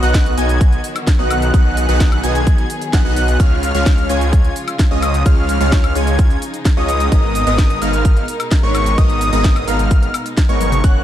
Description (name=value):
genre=EDM, festival progressive house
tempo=129 BPM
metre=4/4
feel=straight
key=unclear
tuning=A4 = 440 Hz
part: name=warm studio string section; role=sustained chords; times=0.0-11.0 s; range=B2 to A#4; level=-27 LUFS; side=left 1 dB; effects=sidechain pumping
part: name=wide unison lead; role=arpeggios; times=0.0-11.0 s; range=C#6 to G#6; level=-24 LUFS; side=left 1 dB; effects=sidechain pumping, ping-pong delay
part: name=supersaw stab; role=riff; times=0.0-11.0 s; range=G#3 to G#5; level=-20 LUFS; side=equal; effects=wide subtle chorus, sidechain pumping, ping-pong delay
part: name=wide detuned saw bass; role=bass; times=0.0-11.0 s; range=F#1 to C#2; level=-18 LUFS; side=equal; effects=chorus, sidechain pumping
part: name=house drum kit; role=drums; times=0.0-10.9 s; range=hi-hat, shaker, snare drum, toms, woodblock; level=-24 LUFS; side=left 1 dB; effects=none
part: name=electronic kick drum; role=drums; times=0.1-10.9 s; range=none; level=-13 LUFS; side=equal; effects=none
room=little or no reverb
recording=dark, warm production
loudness=-12 LUFS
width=side -12 dB against mid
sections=0.0-11.0 A section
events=drum fill 10.6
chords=0.0 B; 3.4 C#; 7.1 G#madd9